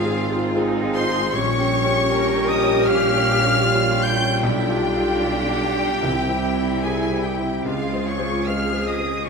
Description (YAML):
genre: classical, romantic movement for piano and orchestra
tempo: 73-79 BPM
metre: 4/4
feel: rubato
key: unclear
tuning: A4 = 439 Hz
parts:
  - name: rich studio violin section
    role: melody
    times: 0.0-9.3 s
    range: F5 to G6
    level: -28 LUFS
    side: left 1 dB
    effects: none
  - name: warm grand piano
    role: melody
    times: 0.0-9.3 s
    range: Bb1 to C5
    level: -25 LUFS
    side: left 1 dB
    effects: none
  - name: bright clarinet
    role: second line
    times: 0.0-9.3 s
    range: F4 to G5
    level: -29 LUFS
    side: left 1 dB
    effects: none
  - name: clear studio violin section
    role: second line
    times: 0.0-9.3 s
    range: F5 to G6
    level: -30 LUFS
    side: left 2 dB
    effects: none
  - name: mellow hollow silver concert flute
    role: second line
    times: 0.0-9.3 s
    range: F5 to G6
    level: -28 LUFS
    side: left 3 dB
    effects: none
  - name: rich studio viola section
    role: accompaniment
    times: 0.0-9.3 s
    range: C4 to Ab4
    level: -28 LUFS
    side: right 3 dB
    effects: none
  - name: mellow French horn section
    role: sustained chords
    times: 0.0-9.3 s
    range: G3 to G4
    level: -26 LUFS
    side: left 3 dB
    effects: none
  - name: rich studio cello section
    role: bass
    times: 0.0-9.3 s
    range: Db4 to Bb4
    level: -30 LUFS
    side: right 1 dB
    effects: none
  - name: warm studio double bass section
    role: bass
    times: 0.0-9.2 s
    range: Ab1 to Db2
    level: -29 LUFS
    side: right 5 dB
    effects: none
  - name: warm tuba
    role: bass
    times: 0.0-9.3 s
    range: Ab1 to Db2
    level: -30 LUFS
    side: right 4 dB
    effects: none
  - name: timpani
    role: percussion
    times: 6.0-7.2 s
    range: C3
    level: -32 LUFS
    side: right 1 dB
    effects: none
room: wet recital hall reverb, RT60 1.3 s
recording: minimal, uncompressed stereo recording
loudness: -18 LUFS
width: side -5 dB against mid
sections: 0.0-9.3 A section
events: none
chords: 0.0 Fm/Ab; 1.3 Gdim/Bb; 4.4 G7/B; 6.0 C; 7.7 Dbmaj7